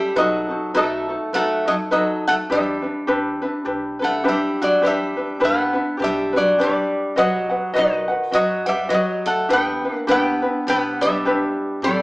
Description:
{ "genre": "Hawaiian", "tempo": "103 BPM", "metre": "4/4", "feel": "swing 58% on 8ths", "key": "E minor", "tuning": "A4 = 440 Hz", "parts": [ { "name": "lap resonator guitar", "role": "melody", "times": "0.0-12.0 s", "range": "D#4 to G5", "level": "-21 LUFS", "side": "equal", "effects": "none" }, { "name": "picked steel-string acoustic guitar", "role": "second line", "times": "0.0-12.0 s", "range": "D#3 to B3", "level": "-27 LUFS", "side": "right 1 dB", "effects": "none" }, { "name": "ukulele", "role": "accompaniment", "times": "0.0-12.0 s", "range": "C4 to F#5", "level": "-21 LUFS", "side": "equal", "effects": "none" }, { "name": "upright bass", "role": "bass", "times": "0.2-12.0 s", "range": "A1 to F#2", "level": "-44 LUFS", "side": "equal", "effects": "none" } ], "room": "moderate large studio reverb, RT60 0.9 s", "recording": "band playing live in one room, small speaker sound", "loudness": "-18 LUFS", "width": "side -23 dB against mid", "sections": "0.0-4.8 A section; 4.8-12.0 A section", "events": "none", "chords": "0.2 B7; 2.5 Em7; 7.2 B; 9.5 Em7", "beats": "| 0.16 0.75 1.33 1.92 | 2.50 3.09 3.67 4.25 | 4.84 5.42 6.00 6.59 | 7.17 7.75 8.33 8.91 | 9.50 10.08 10.66 11.24 | 11.82" }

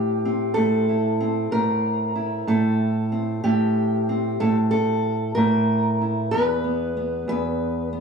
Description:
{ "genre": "acoustic country blues, solo or duo", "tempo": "62 BPM (dotted quarters)", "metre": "12/8", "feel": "straight", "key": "unclear", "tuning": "A4 = 441 Hz", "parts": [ { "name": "fingerpicked steel-string acoustic guitar", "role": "solo", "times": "0.0-8.0 s", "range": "E2 to B4", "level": "-20 LUFS", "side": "right 1 dB", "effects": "none" } ], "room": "moderate studio reverb, RT60 0.8 s", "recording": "small room reverb", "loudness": "-20 LUFS", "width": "side -6 dB against mid", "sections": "0.0-8.0 A section", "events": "none", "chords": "0.0 Am; 6.3 E5", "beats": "0.55 1.51 | 2.47 3.43 4.39 5.35 | 6.31 7.27" }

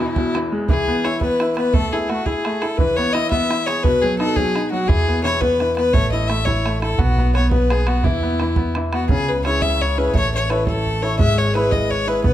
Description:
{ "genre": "celtic folk, Celtic jig", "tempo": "114 BPM (dotted quarters)", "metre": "6/8", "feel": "straight", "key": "E major", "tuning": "A4 = 439 Hz", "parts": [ { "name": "rich fiddle", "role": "melody", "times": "0.0-12.3 s", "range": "D#4 to E5", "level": "-21 LUFS", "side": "left 2 dB", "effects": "none" }, { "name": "bright upright piano", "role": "accompaniment", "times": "0.0-12.3 s", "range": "E2 to C#5", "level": "-22 LUFS", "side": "equal", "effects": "none" }, { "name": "bodhran", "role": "percussion", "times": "0.2-12.3 s", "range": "none", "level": "-22 LUFS", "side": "right 2 dB", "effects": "none" }, { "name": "upright bass", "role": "bass", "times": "4.9-12.3 s", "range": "G#1 to E2", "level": "-21 LUFS", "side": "equal", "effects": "none" } ], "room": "moderate recital hall reverb, RT60 1.9 s", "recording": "close, detailed microphones", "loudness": "-16 LUFS", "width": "side -12 dB against mid", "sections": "0.7-9.1 A section; 9.1-12.3 B section", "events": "none", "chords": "0.0 E; 1.7 A5; 2.8 E; 3.8 B; 4.9 E; 5.9 A; 7.0 B5; 8.0 E5; 9.1 C#m; 10.1 A; 11.2 E/G#", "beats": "0.16 | 0.69 1.21 | 1.74 2.26 | 2.79 3.31 | 3.84 4.36 | 4.89 5.41 | 5.94 6.46 | 6.99 7.51 | 8.04 8.57 | 9.09 9.62 | 10.14 10.67 | 11.19 11.72 | 12.24" }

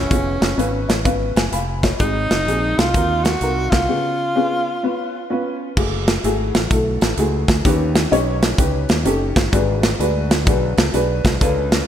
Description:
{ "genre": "uptempo gospel", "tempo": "128 BPM", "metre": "4/4", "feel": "swing 66% on 8ths", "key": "F# minor from 5.8 s", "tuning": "A4 = 440 Hz", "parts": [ { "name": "breathy tenor saxophone", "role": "melody", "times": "0.0-5.3 s", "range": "C#4 to F#4", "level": "-22 LUFS", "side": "right 1 dB", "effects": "ping-pong delay" }, { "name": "modern bright fingered electric bass", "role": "bass", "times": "0.0-11.8 s", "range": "E#1 to D#2", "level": "-22 LUFS", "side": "equal", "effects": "none" }, { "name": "dark upright piano", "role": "accompaniment", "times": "0.1-11.9 s", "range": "G#2 to B5", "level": "-22 LUFS", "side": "left 2 dB", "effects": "wide subtle chorus" }, { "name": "modern studio drum kit", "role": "drums", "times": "0.1-11.8 s", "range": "crash cymbal, hi-hat, kick drum, snare drum", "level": "-18 LUFS", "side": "equal", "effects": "gated reverb" } ], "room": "light reverb, small room ambience", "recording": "bright 1980s-style digital production", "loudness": "-16 LUFS", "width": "side -10 dB against mid", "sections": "0.0-5.8 A section; 5.8-11.9 B section", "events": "upright piano fill 0.6-2.0; break 3.9-5.8", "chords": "0.1 C#7/E#; 2.0 G#7; 3.9 C#7; 5.8 F#m9; 7.7 D#7alt; 9.5 G#m7b5", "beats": "| 0.10 0.58 1.05 1.52 | 2.00 2.47 2.94 3.41 | 3.89 4.36 4.83 5.30 | 5.77 6.24 6.71 7.18 | 7.65 8.12 8.59 9.06 | 9.53 10.00 10.47 10.95 | 11.41" }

